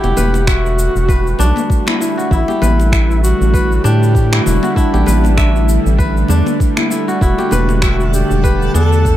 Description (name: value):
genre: organic downtempo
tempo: 98 BPM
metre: 4/4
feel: swing 56% on 16ths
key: E minor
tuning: A4 = 440 Hz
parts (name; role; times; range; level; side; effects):
- mellow duduk; melody; 0.0-9.2 s; D4 to A4; -20 LUFS; left 1 dB; tape echo
- bowed-like drone; sustained chords; 0.0-9.2 s; D3 to F#5; -20 LUFS; equal; built-in reverb, sidechain pumping
- kora; arpeggios; 0.0-9.2 s; D4 to E5; -20 LUFS; equal; analog delay
- round analog bass; bass; 0.0-9.2 s; E1 to A2; -14 LUFS; equal; sidechain pumping
- electronic shaker and finger snaps; drums; 0.0-9.2 s; none; -23 LUFS; equal; overdrive
- congas; percussion; 0.0-8.9 s; none; -23 LUFS; left 4 dB; none
- electronic kick drum; drums; 0.5-9.2 s; none; -15 LUFS; equal; overdrive
- twinkling granular texture; texture; 7.7-9.2 s; A4 to F#5; -29 LUFS; equal; built-in reverb
room: little or no reverb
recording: echo-heavy mix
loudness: -11 LUFS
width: side -13 dB against mid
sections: 0.0-9.2 A section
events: none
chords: 0.0 Em11